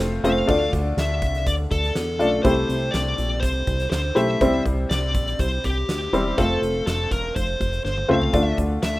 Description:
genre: piano-driven pop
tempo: 122 BPM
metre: 4/4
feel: straight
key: D minor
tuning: A4 = 440 Hz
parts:
  - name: bright upright piano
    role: accompaniment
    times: 0.0-9.0 s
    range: C3 to D5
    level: -23 LUFS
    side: left 1 dB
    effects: none
  - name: chorused synth bass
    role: bass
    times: 0.0-9.0 s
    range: E1 to E2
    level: -25 LUFS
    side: equal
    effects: none
  - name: huge arena drum kit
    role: drums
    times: 0.2-8.9 s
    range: crash cymbal, hi-hat, kick drum, snare drum, toms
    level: -28 LUFS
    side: equal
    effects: none
  - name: smooth overdriven lead guitar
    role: melody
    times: 0.3-9.0 s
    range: G4 to F5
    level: -26 LUFS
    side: left 1 dB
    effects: none
room: little or no reverb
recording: rough home demo mix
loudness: -19 LUFS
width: side -18 dB against mid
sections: 0.5-9.0 A section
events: drum fill 7.8-8.3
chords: 0.5 Dm; 2.5 Am7; 4.4 C; 6.4 F; 8.3 Dm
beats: 0.00 | 0.49 0.98 1.47 1.96 | 2.45 2.94 3.43 3.92 | 4.41 4.90 5.39 5.89 | 6.38 6.87 7.36 7.85 | 8.34 8.83

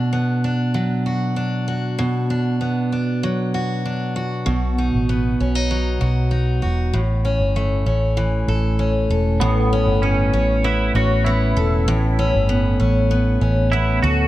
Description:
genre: acoustic pop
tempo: 97 BPM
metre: 4/4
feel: straight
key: unclear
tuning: A4 = 439 Hz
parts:
  - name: picked steel-string acoustic guitar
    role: accompaniment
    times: 0.0-14.3 s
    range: A2 to A4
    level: -20 LUFS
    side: equal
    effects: none
  - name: vintage muted fingered electric bass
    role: bass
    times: 4.5-14.3 s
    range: E1 to D2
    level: -19 LUFS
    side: equal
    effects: none
  - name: twangy electric guitar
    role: second line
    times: 9.4-14.3 s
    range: B3 to F#4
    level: -24 LUFS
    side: right 2 dB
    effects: analog chorus
room: light reverb, studio ambience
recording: none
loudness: -17 LUFS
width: side -15 dB against mid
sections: 0.0-9.4 A section; 9.4-14.3 B section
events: none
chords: 0.0 Bm; 4.5 B; 6.9 A; 9.4 Aadd9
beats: 0.13 0.75 1.37 | 1.99 2.61 3.23 3.85 | 4.46 5.08 5.70 6.32 | 6.94 7.56 8.17 8.79 | 9.41 10.03 10.64 11.26 | 11.88 12.49 13.11 13.72

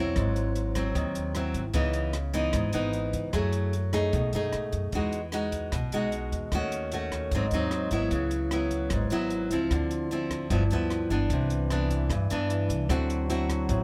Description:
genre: bossa nova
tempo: 151 BPM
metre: 4/4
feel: straight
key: unclear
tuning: A4 = 442 Hz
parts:
  - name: nylon-string guitar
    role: accompaniment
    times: 0.0-13.8 s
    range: G2 to G#4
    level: -30 LUFS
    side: equal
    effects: none
  - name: upright bass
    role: bass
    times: 0.0-13.8 s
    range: G1 to G#2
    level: -33 LUFS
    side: equal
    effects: none
  - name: compact cocktail drum kit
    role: drums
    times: 0.2-13.8 s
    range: hi-hat, kick drum, rim click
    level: -36 LUFS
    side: equal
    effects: none
  - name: mellow trombone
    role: second line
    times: 11.3-13.8 s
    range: E3 to F#3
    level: -38 LUFS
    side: equal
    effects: none
room: light reverb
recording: close, detailed microphones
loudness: -28 LUFS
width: mono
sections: 0.0-13.8 A section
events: none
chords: 0.2 G#7b13; 1.8 C#m9; 3.3 F#m9; 4.1 B6; 4.9 Emaj9; 6.5 D#m7b5; 7.3 G#7; 8.1 C#m7; 9.7 Dm9; 10.5 G6; 11.3 Cmaj9; 12.9 D9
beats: | 0.16 0.56 0.96 1.35 | 1.75 2.15 2.55 2.95 | 3.34 3.74 4.14 4.54 | 4.93 5.33 5.73 6.13 | 6.53 6.93 7.33 7.72 | 8.12 8.52 8.92 9.32 | 9.72 10.11 10.51 10.91 | 11.31 11.71 12.11 12.51 | 12.90 13.30 13.70

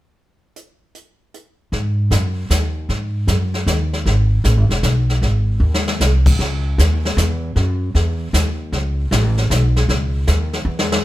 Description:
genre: jazz piano trio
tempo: 154 BPM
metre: 3/4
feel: swing 66% on 8ths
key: C# minor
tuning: A4 = 440 Hz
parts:
  - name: jazz brush drum kit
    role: drums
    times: 0.6-11.0 s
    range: brushed snare drum, crash cymbal, hi-hat, kick drum, snare drum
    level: -21 LUFS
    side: left 1 dB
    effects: none
  - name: upright bass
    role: bass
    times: 1.7-11.0 s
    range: E1 to G#2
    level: -16 LUFS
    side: equal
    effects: none
room: little or no reverb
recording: none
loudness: -15 LUFS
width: side -16 dB against mid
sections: 0.6-1.7 A section; 1.7-6.4 B section; 6.4-11.0 C section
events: drum fill 5.6-6.0, 10.7-11.0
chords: none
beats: | 0.55 0.94 1.33 | 1.72 2.11 2.50 | 2.89 3.27 3.66 | 4.05 4.44 4.83 | 5.22 5.61 6.00 | 6.38 6.77 7.16 | 7.55 7.94 8.32 | 8.71 9.10 9.49 | 9.88 10.26 10.65 | 11.04

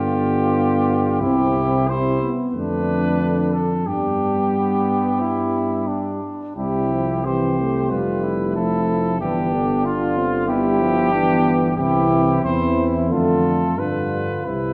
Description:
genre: classical, brass quintet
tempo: 91 BPM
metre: 4/4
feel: uneven beats, rubato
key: unclear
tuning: A4 = 442 Hz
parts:
  - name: warm trumpet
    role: melody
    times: 0.0-14.7 s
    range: F4 to C5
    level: -27 LUFS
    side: equal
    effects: none
  - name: warm flugelhorn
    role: second line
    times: 0.0-14.7 s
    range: B3 to G4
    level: -28 LUFS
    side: equal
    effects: none
  - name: clear trombone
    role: accompaniment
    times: 0.0-14.7 s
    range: C3 to A3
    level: -27 LUFS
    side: equal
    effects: none
  - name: dark French horn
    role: accompaniment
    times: 0.0-14.7 s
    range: G3 to D4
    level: -27 LUFS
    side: equal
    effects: none
  - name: mellow tuba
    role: bass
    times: 0.0-14.7 s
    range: F1 to G2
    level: -26 LUFS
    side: equal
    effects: none
room: moderate concert hall reverb, RT60 2.2 s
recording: none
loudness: -20 LUFS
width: mono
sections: 0.0-14.7 A section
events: none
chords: 0.0 G7; 1.2 C; 2.5 Dm/F; 3.9 G; 6.6 C; 7.9 F; 9.2 G7; 11.8 C; 13.1 Dm/F; 13.8 G7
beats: 0.56 | 1.21 1.88 2.54 3.19 | 3.86 4.53 5.20 5.88 | 6.56 7.25 7.91 8.56 | 9.20 9.84 10.48 11.12 | 11.77 12.44 13.10 13.77 | 14.46

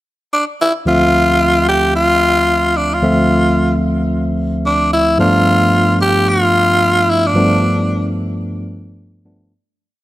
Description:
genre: R&B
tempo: 111 BPM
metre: 4/4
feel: swing 61% on 16ths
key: D dorian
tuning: A4 = 440 Hz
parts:
  - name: growling tenor saxophone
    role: melody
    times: 0.3-8.1 s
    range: D4 to G4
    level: -13 LUFS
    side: equal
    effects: none
  - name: tine electric piano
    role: accompaniment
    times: 0.9-9.5 s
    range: D2 to E5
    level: -15 LUFS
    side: equal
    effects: none
room: light reverb, studio ambience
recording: none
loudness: -11 LUFS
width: side -16 dB against mid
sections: 0.0-0.9 pickup bar; 0.9-9.5 verse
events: fade-out 7.3-9.5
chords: 0.0 N.C.; 0.9 Dm7; 5.2 G7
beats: 0.32 | 0.86 1.40 1.94 2.48 | 3.02 3.56 4.11 4.65 | 5.19 5.73 6.27 6.81 | 7.35 7.89 8.43 8.97

